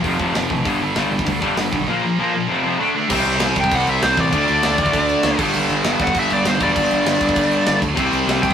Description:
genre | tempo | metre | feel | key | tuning
punk rock | 197 BPM | 4/4 | straight | unclear | A4 = 439 Hz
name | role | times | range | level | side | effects
distorted electric guitar | riff | 0.0-8.5 s | F2 to D4 | -21 LUFS | left 3 dB | distortion
distorted electric guitar | riff | 0.0-8.5 s | F2 to D4 | -26 LUFS | right 3 dB | distortion
high-gain distorted guitar | riff | 0.0-8.5 s | F2 to D4 | -22 LUFS | right 2 dB | distortion
fuzz picked electric bass | bass | 0.0-8.5 s | E1 to D2 | -25 LUFS | equal | overdrive
tight metal drum kit | drums | 0.0-8.5 s | crash cymbal, hi-hat, kick drum, snare drum | -23 LUFS | equal | none
biting lead guitar | melody | 3.6-8.5 s | C5 to G5 | -19 LUFS | equal | overdrive
room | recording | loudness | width
light reverb | rough rehearsal-room recording, warm saturation | -16 LUFS | side -8 dB against mid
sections
0.0-3.1 A section; 3.1-8.5 B section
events
none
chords
0.0 F; 0.7 G5; 1.9 Bb5; 2.5 F5; 2.8 D5; 3.1 C5; 4.3 D5; 5.4 G5; 8.0 C5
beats
0.04 0.35 | 0.66 0.96 1.27 1.58 | 1.89 2.19 2.50 2.80 | 3.11 3.41 3.72 4.02 | 4.33 4.63 4.93 5.24 | 5.54 5.85 6.15 6.45 | 6.76 7.06 7.36 7.67 | 7.97 8.27

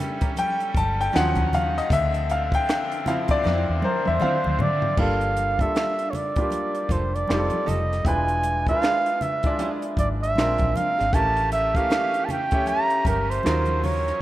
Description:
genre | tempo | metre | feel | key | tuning
R&B, neo-soul | 78 BPM | 4/4 | swing 61% on 16ths | G dorian | A4 = 441 Hz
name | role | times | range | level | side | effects
clear baby grand piano | accompaniment | 0.0-14.2 s | E3 to A5 | -26 LUFS | left 2 dB | none
pipe organ, clarinet reed | sustained chords | 0.0-5.0, 11.1-14.2 s | D3 to Gb5 | -35 LUFS | equal | none
compact cocktail drum kit | drums | 0.0-14.2 s | crash cymbal, finger snaps, hi-hat, kick drum, snare drum, toms | -27 LUFS | equal | none
archtop guitar, miked and amplified | second line | 0.2-14.0 s | F3 to Bb4 | -36 LUFS | right 6 dB | none
congas | percussion | 0.4-14.0 s | none | -35 LUFS | left 1 dB | none
vintage muted fingered electric bass | bass | 0.8-14.1 s | E1 to D3 | -26 LUFS | equal | none
warm flugelhorn | melody | 3.8-14.2 s | Bb4 to Bb5 | -24 LUFS | right 2 dB | none
room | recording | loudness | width
moderate lush hall reverb, RT60 2.8 s | rough home demo mix | -20 LUFS | side -14 dB against mid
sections
0.0-5.0 A section; 5.0-14.2 B section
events
grand piano solo 0.0-5.0; drum fill 3.4-5.0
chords
0.0 A7b9; 1.1 Ebm9; 1.9 Dm9; 5.0 Gm9; 7.3 F9; 8.1 E7b9; 10.4 Bb9; 11.1 A7b9; 13.4 Ebm9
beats
0.36 1.13 | 1.90 2.67 3.44 4.21 | 4.98 5.75 6.52 7.29 | 8.05 8.82 9.59 10.36 | 11.13 11.90 12.67 13.44 | 14.21

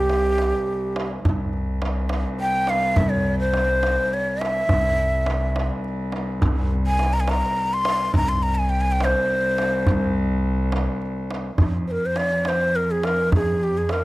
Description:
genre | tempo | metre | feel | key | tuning
Persian modal ensemble | 70 BPM (dotted quarters) | 6/8 | straight | C dastgah homayun | A4 = 438 Hz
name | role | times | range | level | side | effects
breathy ney | melody | 0.0-14.0 s | G4 to C6 | -22 LUFS | equal | none
upright bass | bass | 0.0-14.0 s | C2 to F2 | -24 LUFS | equal | none
clear cello | drone | 0.0-14.0 s | C2 to F2 | -27 LUFS | equal | none
tombak | percussion | 0.1-14.0 s | none | -26 LUFS | right 1 dB | none
room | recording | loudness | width
little or no reverb | dry, close 1970s-style studio recording | -19 LUFS | side -18 dB against mid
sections
0.0-11.6 A section; 11.6-14.0 B section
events
none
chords
none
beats
0.39 | 1.25 2.11 | 2.98 3.84 | 4.70 5.56 | 6.43 7.29 | 8.15 9.01 | 9.87 10.73 | 11.60 12.46 | 13.32

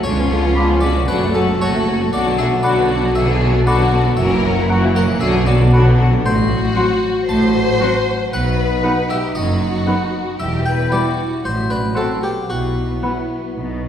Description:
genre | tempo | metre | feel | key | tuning
cinematic | 116 BPM | 4/4 | straight | unclear | A4 = 439 Hz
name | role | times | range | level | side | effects
harpsichord | melody | 0.0-13.9 s | F#4 to A5 | -26 LUFS | left 1 dB | none
rich studio violin section | melody | 0.0-13.9 s | B3 to C5 | -24 LUFS | left 4 dB | none
rich studio violin section | second line | 0.0-13.1 s | A3 to A4 | -24 LUFS | left 3 dB | none
rich studio viola section | accompaniment | 0.0-13.1 s | D3 to C#4 | -23 LUFS | right 1 dB | none
mellow French horn section | sustained chords | 0.0-13.9 s | F#3 to F#4 | -24 LUFS | left 2 dB | none
bright studio cello section | bass | 0.0-13.9 s | C#2 to B2 | -22 LUFS | right 2 dB | none
rich studio double bass section | bass | 0.1-13.9 s | E1 to C#2 | -20 LUFS | right 1 dB | none
clear oboe | second line | 0.6-13.2 s | F#5 to B5 | -28 LUFS | equal | none
mellow hollow silver concert flute | second line | 0.6-13.1 s | A#5 to D6 | -28 LUFS | left 1 dB | none
warm clarinet | second line | 0.6-13.2 s | D#4 to F#4 | -28 LUFS | left 2 dB | none
room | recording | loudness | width
wet scoring stage reverb, RT60 1.5 s | heard from further back in the room | -14 LUFS | side -9 dB against mid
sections
0.0-13.9 A section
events
none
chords
0.0 C#7b9; 1.1 F#m; 2.1 Bm; 4.2 F#7; 5.2 Bm; 6.2 F#dim/A; 8.3 B; 10.4 Em; 11.4 F#dim/A; 12.5 Bsus4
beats
| 0.04 0.56 1.09 1.61 | 2.13 2.64 3.16 3.67 | 4.19 4.70 5.22 5.73 | 6.24 6.75 7.28 7.80 | 8.32 8.83 9.35 9.87 | 10.39 10.90 11.42 11.95 | 12.49 13.03 13.56

